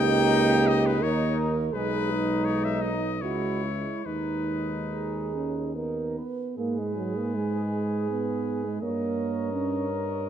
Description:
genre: classical, hymn-like piece for brass band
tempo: 69-87 BPM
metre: 3/4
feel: rubato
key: G# minor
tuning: A4 = 442 Hz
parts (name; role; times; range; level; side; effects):
- clear cornet; melody; 0.0-10.3 s; B4 to G5; -33 LUFS; left 8 dB; none
- warm French horn section; second line; 0.0-10.3 s; D#4 to C#5; -31 LUFS; right 7 dB; none
- bright trombone section; accompaniment; 0.0-10.3 s; D#4 to A#4; -32 LUFS; left 3 dB; none
- dark euphonium; accompaniment; 0.0-9.9 s; F#3 to C#4; -31 LUFS; right 2 dB; none
- warm tuba; bass; 0.0-10.3 s; B1 to G#2; -31 LUFS; equal; none
room: light reverb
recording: close, detailed microphones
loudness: -25 LUFS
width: side -9 dB against mid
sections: 0.0-6.6 A section; 6.6-10.3 B section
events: none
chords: 0.0 D#7/C#; 1.7 G#m/B; 3.2 C#m; 4.1 G#m/D#; 5.7 D#5; 6.6 G#m; 8.8 D#7/G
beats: 0.31 1.02 | 1.73 2.44 3.22 | 4.05 4.91 5.75 | 6.57 7.33 8.09 | 8.81 9.52 10.22

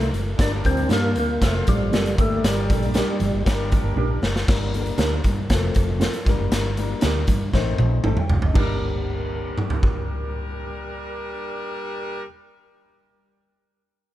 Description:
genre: uptempo 1960s-style soul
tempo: 118 BPM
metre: 4/4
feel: straight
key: G minor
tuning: A4 = 445 Hz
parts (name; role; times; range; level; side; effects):
- percussive tonewheel organ; melody; 0.0-3.4 s; G3 to D4; -25 LUFS; equal; chorus vibrato, slow rotary speaker, tape echo
- warm horn section; second line; 0.0-4.2, 8.5-12.2 s; G3 to D5; -33 LUFS; equal; none
- dark grand piano; accompaniment; 0.0-12.3 s; Eb3 to A5; -31 LUFS; left 6 dB; none
- mellow electric guitar; stabs; 0.0-12.3 s; C4 to C5; -30 LUFS; right 4 dB; none
- vintage muted fingered electric bass; bass; 0.0-12.2 s; F1 to G2; -24 LUFS; equal; none
- raw garage drum kit; drums; 0.0-9.9 s; crash cymbal, hi-hat, kick drum, snare drum, toms; -22 LUFS; equal; none
- congas; percussion; 0.1-8.8 s; none; -36 LUFS; right 3 dB; none
room: little or no reverb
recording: none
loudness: -20 LUFS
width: side -14 dB against mid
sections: 0.0-4.5 A section; 4.5-8.6 B section; 8.6-12.6 C section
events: drum fill 4.0-4.5, 7.5-8.6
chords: 0.4 Gm; 1.4 F; 2.2 Gm; 5.5 F; 6.3 Gm; 7.5 Adim; 8.6 Gm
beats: | 0.39 0.91 1.42 1.93 | 2.44 2.95 3.46 3.98 | 4.49 4.99 5.50 6.01 | 6.52 7.03 7.54 8.05 | 8.55 9.06 9.57 10.08 | 10.59 11.10 11.60 12.11

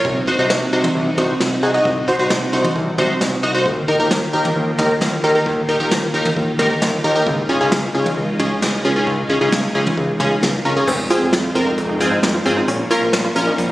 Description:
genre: synth-pop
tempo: 133 BPM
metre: 4/4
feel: straight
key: unclear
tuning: A4 = 436 Hz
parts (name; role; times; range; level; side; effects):
- funky polysynth comp; accompaniment; 0.0-13.5 s; C4 to Eb5; -18 LUFS; equal; chorus
- fat analog bass; bass; 0.0-13.7 s; F1 to Eb2; -22 LUFS; equal; none
- jazz brush drum kit; drums; 0.0-13.7 s; crash cymbal, hi-hat, kick drum, snare drum, toms; -23 LUFS; equal; none
- string machine, violins; sustained chords; 0.1-13.7 s; C3 to G4; -24 LUFS; equal; ensemble chorus
- wide unison pluck; arpeggios; 10.9-13.7 s; C4 to F4; -23 LUFS; equal; tape echo
room: moderate lush hall reverb, RT60 2.1 s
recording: recorded on a phone in the room, studio reverb, compression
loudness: -15 LUFS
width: side -16 dB against mid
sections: 0.0-10.9 A section; 10.9-13.7 B section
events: none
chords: 0.0 Cdim; 3.7 Ebadd9; 7.3 Dbadd9; 10.9 Fm; 12.7 Bbm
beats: | 0.05 0.50 0.95 1.40 | 1.85 2.30 2.75 3.21 | 3.66 4.11 4.56 5.01 | 5.46 5.91 6.36 6.82 | 7.27 7.72 8.17 8.62 | 9.07 9.52 9.97 10.42 | 10.88 11.33 11.78 12.23 | 12.68 13.13 13.58

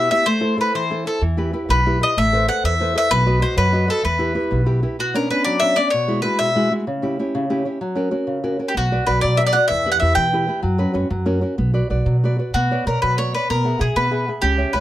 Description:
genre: italian folk, Italian serenade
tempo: 127 BPM (dotted quarters)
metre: 6/8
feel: rubato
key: E harmonic minor, B harmonic minor from 5.0 s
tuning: A4 = 440 Hz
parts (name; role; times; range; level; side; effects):
- mandolin; melody; 0.0-14.8 s; F#4 to G5; -19 LUFS; left 1 dB; none
- nylon-string guitar; accompaniment; 0.0-14.8 s; B2 to G5; -22 LUFS; equal; none
- upright bass; bass; 1.2-4.8, 8.8-14.8 s; A1 to E3; -20 LUFS; right 1 dB; none
room: moderate small room reverb, RT60 0.5 s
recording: none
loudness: -17 LUFS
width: side -13 dB against mid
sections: 0.0-5.0 A section; 5.0-12.5 B section; 12.5-14.8 B section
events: none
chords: 0.3 Am; 1.2 Em; 2.2 Amadd9; 3.1 B; 4.0 Em; 5.0 Bmadd9; 5.9 Eadd9/B; 6.9 C#dim; 7.8 F#; 8.8 Bm; 9.7 Em; 10.6 F#sus4; 11.1 F#; 11.6 Bm; 12.5 Bmadd9; 13.5 Eadd9/B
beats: | 0.27 0.74 | 1.22 1.70 | 2.17 2.63 | 3.10 3.57 | 4.04 4.51 | 4.99 5.46 | 5.93 6.40 | 6.87 7.33 | 7.81 8.29 | 8.77 9.24 | 9.71 10.17 | 10.64 11.10 | 11.58 12.05 | 12.54 13.02 | 13.49 13.96 | 14.42

